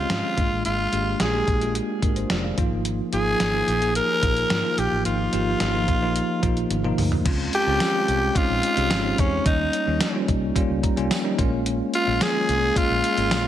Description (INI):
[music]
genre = 1980s-style pop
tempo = 109 BPM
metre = 4/4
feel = straight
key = unclear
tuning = A4 = 440 Hz
[part]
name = growling tenor saxophone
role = melody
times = 0.0-13.5 s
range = Db4 to Bb4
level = -24 LUFS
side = equal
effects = tape echo
[part]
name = bell-like tine electric piano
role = accompaniment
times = 0.0-13.5 s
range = F3 to Bb5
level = -25 LUFS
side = equal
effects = fast stereo tremolo
[part]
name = vintage muted fingered electric bass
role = bass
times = 0.0-13.5 s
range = F1 to Ab2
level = -28 LUFS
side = equal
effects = none
[part]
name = clean 12-bit digital drum machine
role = drums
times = 0.1-13.4 s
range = crash cymbal, hi-hat, kick drum, snare drum, tambourine, toms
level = -25 LUFS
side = equal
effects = gated reverb
[sound]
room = light reverb, digital ambience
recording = none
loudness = -20 LUFS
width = side -11 dB against mid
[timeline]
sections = 0.0-7.3 A section; 7.3-13.5 B section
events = drum fill 6.7-7.3; tine electric piano fill 10.6-11.7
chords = 0.4 Bb7/Ab; 2.6 Ebsus2/Ab; 7.3 Dbmaj7; 9.5 Eb7; 11.4 Bbm7